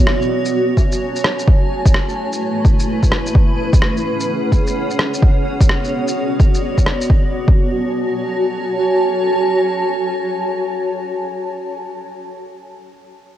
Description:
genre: future garage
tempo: 128 BPM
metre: 4/4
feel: swing 62% on 16ths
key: F# minor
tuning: A4 = 443 Hz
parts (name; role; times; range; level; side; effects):
- granular cloud pad; sustained chords; 0.0-11.4 s; A3 to B5; -18 LUFS; equal; built-in reverb, sidechain pumping
- electronic rim click and shaker; drums; 0.1-7.1 s; none; -21 LUFS; equal; overdrive
- electronic kick drum; drums; 0.8-7.6 s; none; -13 LUFS; equal; none
room: moderate recital hall reverb, RT60 1.3 s, digital ambience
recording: cassette tape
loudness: -14 LUFS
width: side -12 dB against mid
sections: 0.0-7.1 A section; 7.1-10.8 B section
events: none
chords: 0.0 F#m; 1.5 Asus2; 3.3 C#7sus4; 5.2 Bm; 7.1 F#m

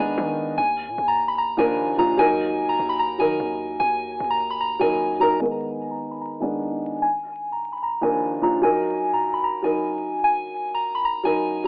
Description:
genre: hip hop, trap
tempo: 149 BPM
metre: 4/4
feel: half-time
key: Eb harmonic minor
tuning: A4 = 440 Hz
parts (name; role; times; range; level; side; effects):
- soft synth bell; melody; 0.0-11.7 s; Ab5 to Cb6; -23 LUFS; equal; chorus, phaser, low-pass filter, analog delay
- felt-muted upright piano; accompaniment; 0.0-11.7 s; Eb2 to Bb4; -23 LUFS; equal; low-pass filter
- hard-hitting 808-style bass; bass; 0.0-5.4 s; Eb2 to Eb3; -35 LUFS; equal; none
room: moderate booth ambience, RT60 0.3 s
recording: vinyl crackle, telephone sound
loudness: -20 LUFS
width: side -27 dB against mid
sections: 0.0-5.4 A section; 5.4-11.7 B section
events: filter sweep 5.4-11.7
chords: 0.0 Abmadd9; 0.6 Bb/Eb; 2.2 Ebm; 5.4 Abmadd9/Eb; 7.0 Bb; 8.6 Ebm

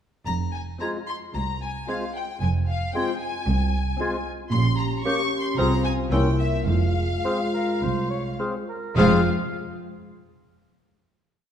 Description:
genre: cinematic, playful, whimsical film cue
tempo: 103-115 BPM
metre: 4/4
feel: straight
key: F minor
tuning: A4 = 439 Hz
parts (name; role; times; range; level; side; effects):
- warm studio violin section; melody; 0.3-9.3 s; E5 to Db6; -32 LUFS; left 3 dB; none
- rich chamber violin section; second line; 0.3-9.3 s; F4 to Db6; -34 LUFS; left 3 dB; none
- rich studio cello section; bass; 0.3-9.3 s; C2 to C3; -27 LUFS; right 1 dB; none
- rich studio double bass section; bass; 0.3-9.3 s; F1 to C2; -26 LUFS; right 2 dB; none
- triangle; percussion; 0.3-1.3 s; none; -50 LUFS; left 4 dB; none
- mellow clarinet; second line; 0.8-9.2 s; F4 to Bb4; -34 LUFS; left 3 dB; none
- mellow cor anglais; second line; 0.8-9.2 s; Bb4 to Db5; -34 LUFS; right 1 dB; none
- silver concert flute; second line; 0.8-9.3 s; E6 to Ab6; -35 LUFS; left 2 dB; none
- rich studio viola section; accompaniment; 0.8-9.3 s; Ab3 to G4; -28 LUFS; left 1 dB; none
- warm bassoon; accompaniment; 0.8-9.2 s; Ab3 to Db4; -33 LUFS; right 1 dB; none
- dark French horn section; sustained chords; 0.8-9.2 s; Ab3 to G4; -29 LUFS; left 3 dB; none
room: moderate scoring stage reverb, RT60 1.8 s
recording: dark, warm production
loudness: -22 LUFS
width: side -9 dB against mid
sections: 0.3-9.0 A section; 9.0-11.2 final chord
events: none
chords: 0.3 Fm; 4.5 Gdim/Bb; 5.6 Fm/C; 6.1 C7b9; 6.7 Fm

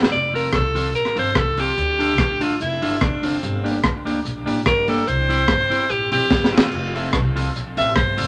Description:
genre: ska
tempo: 146 BPM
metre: 4/4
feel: swing 54% on 8ths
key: F major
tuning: A4 = 445 Hz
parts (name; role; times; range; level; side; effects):
- clean electric guitar; accompaniment; 0.0-8.3 s; Bb3 to A4; -28 LUFS; equal; tape echo
- upright bass; bass; 0.0-8.3 s; F1 to D2; -28 LUFS; equal; none
- crunchy breakbeat drum kit; drums; 0.0-8.3 s; crash cymbal, hi-hat, kick drum, rim click, snare drum; -24 LUFS; equal; none
- bright alto saxophone; melody; 0.1-8.3 s; C4 to E5; -23 LUFS; equal; none
room: moderate studio reverb, RT60 0.7 s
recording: none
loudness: -20 LUFS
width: mono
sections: 0.1-8.3 A section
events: alto saxophone solo 0.1-8.3; drum fill 6.3-6.7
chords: 0.1 F; 1.8 Dm; 3.4 Gm; 5.1 C; 6.7 F

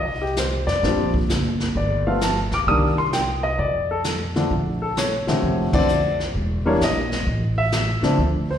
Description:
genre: jazz piano trio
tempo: 130 BPM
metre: 4/4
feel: swing 67% on 8ths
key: Bb major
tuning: A4 = 440 Hz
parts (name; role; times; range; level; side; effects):
- warm baby grand piano; melody; 0.0-8.6 s; C3 to Eb6; -21 LUFS; left 1 dB; slapback echo
- upright bass; bass; 0.0-8.6 s; E1 to F2; -24 LUFS; equal; none
- vintage brush drum kit; drums; 0.4-8.6 s; brushed snare drum, crash cymbal, hi-hat, kick drum, snare drum; -26 LUFS; equal; slapback echo
room: moderate club reverb, RT60 0.8 s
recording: live gig heard through the venue's PA, recital hall reverb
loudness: -19 LUFS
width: side -9 dB against mid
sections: 0.0-4.5 A section; 4.5-8.6 B section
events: band accent 5.7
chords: 0.0 F5; 0.8 Bb69; 1.7 G7; 2.7 Cm7; 3.6 F; 4.5 Bbmaj9; 6.3 E(b5, no3); 7.3 A

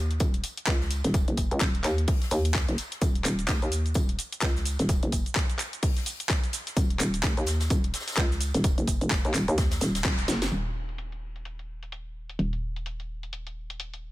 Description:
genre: bass house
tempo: 128 BPM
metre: 4/4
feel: swing 59% on 16ths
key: Eb minor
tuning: A4 = 439 Hz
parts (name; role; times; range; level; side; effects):
- hollow knocking FM bass; bass; 0.0-14.1 s; Eb1 to Eb2; -28 LUFS; equal; sidechain pumping
- garage drum kit; drums; 0.1-14.0 s; cabasa, crash cymbal, handclaps, hi-hat, snare drum; -31 LUFS; equal; low-pass filter on snare, low-pass filter on hats, low-pass filter on perc, low-pass filter on cymbals
- big rock drum kit; drums; 0.2-10.5 s; hi-hat, snare drum, tambourine; -40 LUFS; left 1 dB; none
- electronic kick drum; drums; 0.2-10.2 s; none; -26 LUFS; equal; overdrive
room: small room ambience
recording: none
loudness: -24 LUFS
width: side -16 dB against mid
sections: 0.0-10.5 A section; 10.5-14.1 B section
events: band accent 10.0; drum fill 10.3; filter sweep on drum 10.5-14.1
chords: none

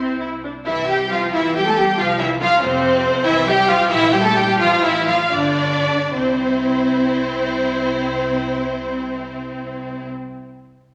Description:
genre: quick classical-period movement for string orchestra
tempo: 72-95 BPM (dotted quarters)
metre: 6/8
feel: rubato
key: C major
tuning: A4 = 436 Hz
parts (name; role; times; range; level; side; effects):
- rich symphonic viola section; accompaniment; 0.0-10.1 s; C4 to A4; -24 LUFS; equal; none
- clear chamber cello section; bass; 0.0-10.1 s; C3 to E4; -28 LUFS; equal; none
- clear chamber double bass section; bass; 0.0-10.1 s; G1 to F2; -34 LUFS; equal; none
- dark symphonic violin section; melody; 0.7-10.1 s; C5 to A5; -23 LUFS; equal; none
- rich chamber violin section; second line; 0.7-10.1 s; C4 to A4; -25 LUFS; equal; none
room: wet scoring stage reverb, RT60 1.6 s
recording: none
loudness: -18 LUFS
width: mono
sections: 0.7-6.1 A section; 6.1-9.3 B section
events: slowing down 2.6-6.1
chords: 0.0 C; 2.0 F5/C; 3.3 C; 3.9 Gm69/Bb; 4.6 F/A; 5.3 G5; 6.1 C

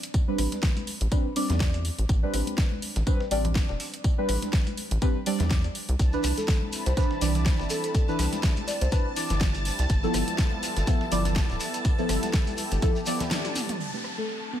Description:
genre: deep house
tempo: 123 BPM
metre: 4/4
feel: swing 56% on 16ths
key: A minor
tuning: A4 = 439 Hz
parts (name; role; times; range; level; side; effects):
- deep mellow chord stab; stabs; 0.0-14.6 s; E3 to D5; -30 LUFS; right 1 dB; chorus, phaser, sidechain pumping, ping-pong delay
- deep house drum kit; drums; 0.0-14.2 s; hi-hat, rim click, snare drum, toms; -33 LUFS; equal; overdrive, low-pass filter on hats, studio reverb, low-pass filter on cymbals, low-pass filter on snare, low-pass filter on toms
- dusty soul sampler-style drum kit; drums; 0.0-14.6 s; hi-hat, snare drum, tambourine; -41 LUFS; left 1 dB; none
- electronic kick drum; drums; 0.1-12.9 s; none; -24 LUFS; equal; studio reverb
- rubbery square bass; bass; 0.4-12.8 s; D1 to E2; -26 LUFS; equal; sidechain pumping
- congas; percussion; 0.5-13.3 s; none; -38 LUFS; left 3 dB; none
- warm analog pad; sustained chords; 6.0-14.6 s; F3 to B5; -36 LUFS; equal; chorus, vintage 12-bit sampler grit, sidechain pumping
- shekere; percussion; 6.0-13.8 s; none; -38 LUFS; left 2 dB; none
- string machine, violins; texture; 6.0-14.6 s; A5; -37 LUFS; equal; ensemble chorus
- buzzing marimba with soft mallets; melody; 6.4-9.2, 14.2-14.3 s; A4 to D5; -34 LUFS; left 1 dB; dub echo
- warbly dusty pluck; arpeggios; 13.8-14.6 s; G3 to B3; -36 LUFS; left 1 dB; chorus, sidechain pumping
- downlifter; sound effects; 13.8-14.6 s; none; -36 LUFS; equal; none
room: digital ambience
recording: none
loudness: -23 LUFS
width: side -11 dB against mid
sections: 0.0-13.8 A section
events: break 13.3-13.8; drum fill 13.3-13.8; band accent 13.3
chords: 0.0 Am11; 5.8 Cmaj9; 9.9 G13; 13.8 Am11

